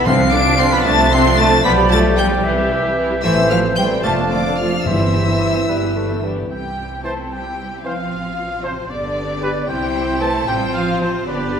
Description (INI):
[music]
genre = quick classical-period movement for symphony orchestra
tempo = 75 BPM (dotted quarters)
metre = 6/8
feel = straight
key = C major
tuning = A4 = 441 Hz
[part]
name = flute section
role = second line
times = 0.0-11.6 s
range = C5 to D6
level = -24 LUFS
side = right 1 dB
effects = none
[part]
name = warm clarinet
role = second line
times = 0.0-11.1 s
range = B4 to F5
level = -24 LUFS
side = left 1 dB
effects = none
[part]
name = warm symphonic violin section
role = second line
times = 0.0-11.6 s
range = C4 to D6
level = -28 LUFS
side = left 2 dB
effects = none
[part]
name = rich studio viola section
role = accompaniment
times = 0.0-11.6 s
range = D3 to A4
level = -25 LUFS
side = equal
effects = none
[part]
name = dark French horn section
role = sustained chords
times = 0.0-11.6 s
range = D3 to G4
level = -23 LUFS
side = left 2 dB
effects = none
[part]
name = rich studio cello section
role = bass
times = 0.0-11.6 s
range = C3 to D4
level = -24 LUFS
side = right 3 dB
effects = none
[part]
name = rich chamber violin section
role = melody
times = 0.1-11.6 s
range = C5 to D7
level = -24 LUFS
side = left 5 dB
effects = none
[part]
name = warm oboe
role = second line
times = 0.1-11.6 s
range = D4 to A5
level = -27 LUFS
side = equal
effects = none
[part]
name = mellow bassoon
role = accompaniment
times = 0.1-11.1 s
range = E3 to B3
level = -26 LUFS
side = right 1 dB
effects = none
[part]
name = rich chamber double bass section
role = bass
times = 0.1-11.6 s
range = F1 to C2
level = -23 LUFS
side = right 2 dB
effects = none
[part]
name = timpani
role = percussion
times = 0.1-0.8, 4.9-5.6 s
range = G2 to C3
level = -23 LUFS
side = equal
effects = none
[part]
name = warm trumpet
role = stabs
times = 7.0-11.6 s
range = B4 to C5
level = -27 LUFS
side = right 2 dB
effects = none
[sound]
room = wet scoring stage reverb, RT60 1.7 s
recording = minimal, uncompressed stereo recording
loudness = -15 LUFS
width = side -7 dB against mid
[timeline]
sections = 0.0-6.5 A section; 6.5-11.6 B section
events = none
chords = 0.1 Dm7/C; 1.6 G7/B; 2.4 C; 3.2 Am; 4.0 Dm/F; 4.9 C/G; 5.7 G; 6.5 C; 8.1 F/A; 8.9 G; 9.7 C; 10.5 F/A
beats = | 0.06 0.85 | 1.64 2.44 | 3.23 4.04 | 4.86 5.69 | 6.51 7.32 | 8.12 8.90 | 9.69 10.48 | 11.28